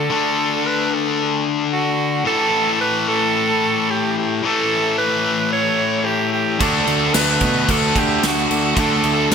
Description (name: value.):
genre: hard rock.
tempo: 111 BPM.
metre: 4/4.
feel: straight.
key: unclear.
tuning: A4 = 441 Hz.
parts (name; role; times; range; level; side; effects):
edgy alto saxophone; melody; 0.0-9.3 s; F#4 to C#5; -20 LUFS; right 6 dB; digital delay.
distorted electric guitar; riff; 0.0-9.3 s; A2 to D4; -19 LUFS; left 7 dB; overdrive.
cranked stack guitar; riff; 6.6-9.3 s; D3 to D4; -23 LUFS; right 14 dB; overdrive, wide subtle chorus.
fuzz picked electric bass; bass; 6.6-9.3 s; D2 to B2; -23 LUFS; right 1 dB; overdrive.
big rock drum kit; drums; 6.6-9.3 s; crash cymbal, kick drum, snare drum; -20 LUFS; equal; gated reverb.
room: moderate plate reverb, RT60 2.1 s.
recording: bright 1980s-style digital production.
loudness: -16 LUFS.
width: side -6 dB against mid.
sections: 0.0-9.3 A section.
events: none.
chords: 0.0 D; 2.3 A5; 6.6 D.